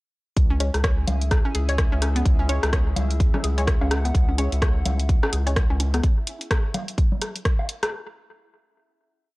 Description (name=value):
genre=minimal techno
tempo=127 BPM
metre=4/4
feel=swing 59% on 16ths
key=C# minor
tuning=A4 = 440 Hz
part: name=round analog bass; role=bass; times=0.4-6.0 s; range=C#2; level=-23 LUFS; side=equal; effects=sidechain pumping
part: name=electronic kick drum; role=drums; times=0.4-7.6 s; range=none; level=-20 LUFS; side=equal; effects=none
part: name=house drum kit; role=drums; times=0.4-7.9 s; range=hi-hat, rim click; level=-29 LUFS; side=equal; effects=none
part: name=bubbling stepped-filter texture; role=texture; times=1.0-6.0 s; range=E4 to E5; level=-40 LUFS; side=left 2 dB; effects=chorus, built-in reverb, sidechain pumping
part: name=warbly tape-like pad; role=texture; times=1.0-6.0 s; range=C#4 to G#5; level=-36 LUFS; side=left 2 dB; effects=chorus, built-in reverb, sidechain pumping
part: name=hollow square pluck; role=riff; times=0.5-6.0 s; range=B3 to C#5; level=-31 LUFS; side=equal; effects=chorus, cassette tape, sidechain pumping, tape echo
part: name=filtered dub chord stab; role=stabs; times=0.6-5.5 s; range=G#3 to C#5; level=-32 LUFS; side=left 1 dB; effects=phaser, analog delay
part: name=electronic rim click, congas and woodblock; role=percussion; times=0.7-7.9 s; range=none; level=-29 LUFS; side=left 1 dB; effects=analog delay
room=digital ambience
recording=dry, gritty hardware recording, transformer saturation, cassette tape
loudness=-20 LUFS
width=side -22 dB against mid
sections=0.4-7.9 drop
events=drop 0.4-7.9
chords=0.4 C#5